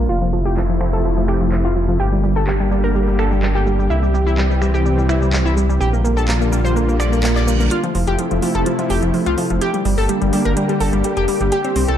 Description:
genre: progressive house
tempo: 126 BPM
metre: 4/4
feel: straight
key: F major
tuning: A4 = 439 Hz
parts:
  - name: supersaw pad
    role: sustained chords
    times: 0.0-12.0 s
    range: C3 to G4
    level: -21 LUFS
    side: equal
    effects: none
  - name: analog pluck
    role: arpeggios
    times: 0.0-12.0 s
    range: F3 to D5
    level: -20 LUFS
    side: equal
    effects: chorus, digital delay
  - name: dark detuned saw bass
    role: bass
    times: 0.0-12.0 s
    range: F1 to C2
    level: -18 LUFS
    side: equal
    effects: none
  - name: house drum kit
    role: drums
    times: 0.1-12.0 s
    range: finger snaps, handclaps, hi-hat, shaker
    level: -28 LUFS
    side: equal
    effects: overdrive
  - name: reverse cymbal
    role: sound effects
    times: 7.0-7.7 s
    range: none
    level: -31 LUFS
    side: right 5 dB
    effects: none
room: light reverb, digital ambience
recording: dark, warm production, low-pass filter, lossy compression artefacts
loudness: -15 LUFS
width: side -10 dB against mid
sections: 0.0-7.7 A section; 7.7-12.0 B section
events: filter sweep on synth pluck 0.0-7.7; filter sweep 0.0-7.7; reverse cymbal 7.0-7.7; build-up 7.7-12.0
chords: 0.1 Fmaj7; 2.0 Gm; 3.9 C; 5.8 Bb6; 7.7 Fmaj7; 9.6 Gm

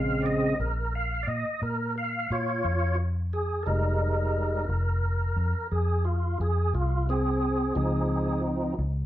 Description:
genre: slow blues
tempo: 59 BPM (dotted quarters)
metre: 12/8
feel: straight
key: F minor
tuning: A4 = 439 Hz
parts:
  - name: tonewheel organ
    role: sustained chords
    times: 0.0-8.7 s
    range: Db3 to F5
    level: -28 LUFS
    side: equal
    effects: slow rotary speaker, overdrive, chorus vibrato
  - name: vintage muted fingered electric bass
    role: bass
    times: 0.0-9.1 s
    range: F1 to Bb2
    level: -27 LUFS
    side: equal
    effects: none
room: wet studio reverb, RT60 0.7 s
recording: band playing live in one room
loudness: -25 LUFS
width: side -13 dB against mid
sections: 0.0-9.1 A section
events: tonewheel organ solo 0.0-9.1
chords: 0.0 Bbm7; 3.7 Fm7; 7.8 Dbmaj7

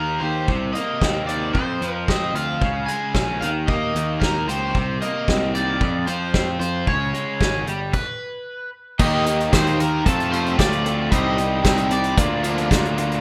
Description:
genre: indie rock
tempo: 113 BPM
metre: 4/4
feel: straight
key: C dorian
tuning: A4 = 440 Hz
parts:
  - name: crunchy overdriven guitar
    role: melody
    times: 0.0-12.4 s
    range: A4 to Ab5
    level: -28 LUFS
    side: equal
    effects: tape echo
  - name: biting overdriven guitar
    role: riff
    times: 0.0-13.2 s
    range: F2 to G4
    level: -27 LUFS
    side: equal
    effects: none
  - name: fuzz picked electric bass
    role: bass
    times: 0.0-13.2 s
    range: G1 to F2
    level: -28 LUFS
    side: equal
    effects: overdrive
  - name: loose indie drum kit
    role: drums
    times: 0.5-13.2 s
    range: crash cymbal, hi-hat, kick drum, snare drum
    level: -25 LUFS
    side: equal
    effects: none
  - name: combo organ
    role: sustained chords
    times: 9.0-13.2 s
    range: F4 to C6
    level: -34 LUFS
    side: equal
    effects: none
  - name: crunchy overdriven guitar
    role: riff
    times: 9.0-13.0 s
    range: C3 to G4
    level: -30 LUFS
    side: equal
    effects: subtle chorus
room: light reverb, small room ambience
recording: rough home demo mix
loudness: -21 LUFS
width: mono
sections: 0.0-9.0 A section; 9.0-13.2 B section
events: stop 7.9-9.0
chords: 0.5 Cm7; 1.6 F5; 2.6 Db5; 3.4 Eb; 4.8 Cm7; 5.8 F5; 6.9 Db5; 7.7 G; 9.0 Eb; 10.1 F; 11.1 Cm; 12.2 Bb/D

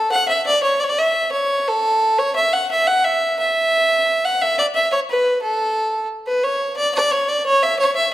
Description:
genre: medieval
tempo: 176 BPM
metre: 3/4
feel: straight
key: A major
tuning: A4 = 440 Hz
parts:
  - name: rich fiddle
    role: solo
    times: 0.0-8.1 s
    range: A4 to F#5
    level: -16 LUFS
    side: equal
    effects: none
room: moderate recital hall reverb, RT60 1.4 s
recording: none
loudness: -16 LUFS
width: side -14 dB against mid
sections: 0.0-6.4 A section; 6.4-8.1 B section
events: none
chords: none

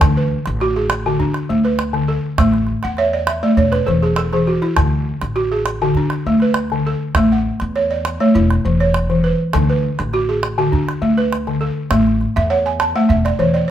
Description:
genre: west african traditional, West African string and xylophone music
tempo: 101 BPM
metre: 4/4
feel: straight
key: D lydian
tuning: A4 = 441 Hz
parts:
  - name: balafon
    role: arpeggios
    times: 0.0-13.7 s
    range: D3 to A5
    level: -16 LUFS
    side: equal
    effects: none
  - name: upright bass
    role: bass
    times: 0.0-13.6 s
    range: E1 to E2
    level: -22 LUFS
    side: equal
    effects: none
  - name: calabash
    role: percussion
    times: 0.0-13.6 s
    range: none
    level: -20 LUFS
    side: right 3 dB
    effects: none
room: light reverb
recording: band playing live in one room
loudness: -14 LUFS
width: side -11 dB against mid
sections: 0.0-13.7 A section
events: balafon fill 2.8-4.8, 12.4-13.7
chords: 0.0 D; 2.4 A; 3.6 E69; 4.8 D; 7.2 A; 8.3 E5; 9.5 D; 11.9 A; 13.1 E5

